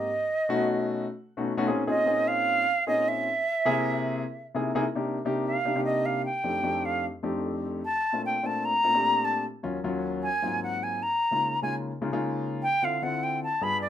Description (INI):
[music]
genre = jazz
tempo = 151 BPM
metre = 4/4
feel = straight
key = C dorian from 4.9 s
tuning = A4 = 440 Hz
[part]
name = silver concert flute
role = melody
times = 0.0-13.9 s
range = D5 to B5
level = -25 LUFS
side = right 1 dB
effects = none
[part]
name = warm concert grand piano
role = accompaniment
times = 0.0-13.9 s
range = Eb2 to Ab4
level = -29 LUFS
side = left 2 dB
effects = none
[sound]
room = moderate club reverb, RT60 0.5 s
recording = minimal, uncompressed stereo recording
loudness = -25 LUFS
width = side -10 dB against mid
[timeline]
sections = 0.0-4.9 A section; 4.9-13.9 B section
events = flute solo 4.9-13.9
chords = 0.1 B9; 1.7 Bbm11; 3.3 C7alt; 4.9 Cm9; 6.5 F13; 8.0 Bbmaj9; 9.6 Ebm7; 10.4 Ab13; 11.2 Db69; 12.8 Dm7